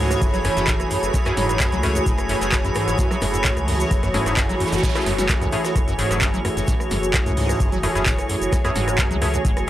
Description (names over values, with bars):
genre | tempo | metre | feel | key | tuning
acid house | 130 BPM | 4/4 | straight | F# minor | A4 = 440 Hz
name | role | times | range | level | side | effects
lush unison pad | sustained chords | 0.0-9.7 s | E3 to G#4 | -27 LUFS | right 1 dB | chorus, sidechain pumping
acid bass, square | riff | 0.0-9.5 s | F#2 to F#3 | -26 LUFS | equal | overdrive, wide subtle chorus, sidechain pumping
round analog bass | bass | 0.0-9.7 s | F#1 to C#2 | -27 LUFS | equal | tube saturation, sidechain pumping
granular cloud pad | texture | 0.0-9.7 s | F#4 to B5 | -24 LUFS | right 1 dB | built-in reverb, sidechain pumping
electro analog drum machine | drums | 0.1-9.7 s | handclaps, hi-hat, rim click, shaker, snare drum | -26 LUFS | equal | overdrive
electronic kick drum | drums | 0.2-9.5 s | none | -23 LUFS | equal | overdrive
modern studio drum kit | drums | 0.2-9.7 s | hi-hat, shaker, snare drum | -36 LUFS | right 1 dB | none
band-passed chord stab | stabs | 0.4-9.3 s | A3 to G#4 | -28 LUFS | left 2 dB | chorus, analog delay
noise sweep | sound effects | 4.3-5.8 s | none | -33 LUFS | right 4 dB | none
room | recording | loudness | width
light reverb | dry, gritty hardware recording | -18 LUFS | side -13 dB against mid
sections
0.0-9.7 A section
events
noise sweep 4.3-5.8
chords
0.0 F#m7